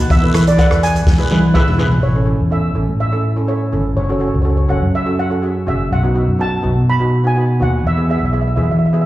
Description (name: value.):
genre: calypso.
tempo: 124 BPM.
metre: 4/4.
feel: straight.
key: A major.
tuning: A4 = 440 Hz.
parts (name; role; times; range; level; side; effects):
steel pan; melody; 0.0-9.1 s; C#5 to B5; -22 LUFS; right 1 dB; slapback echo, tape echo.
steel pan; accompaniment; 0.0-9.1 s; B3 to B4; -21 LUFS; right 1 dB; slapback echo.
fingered electric bass; bass; 0.0-9.1 s; F#1 to E3; -15 LUFS; equal; none.
open jazz drum kit; drums; 0.1-2.0 s; hi-hat, kick drum, rim click, snare drum, toms; -16 LUFS; equal; none.
guiro; percussion; 0.1-1.9 s; none; -31 LUFS; left 2 dB; slapback echo.
room: light reverb.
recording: live gig heard through the venue's PA, recital hall reverb.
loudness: -13 LUFS.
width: side -15 dB against mid.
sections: 0.0-2.0 A section; 2.0-9.1 B section.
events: drum fill 1.1-2.0.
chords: 0.1 Esus4; 1.1 E; 2.0 A; 4.0 F#m; 5.9 B7; 7.9 E.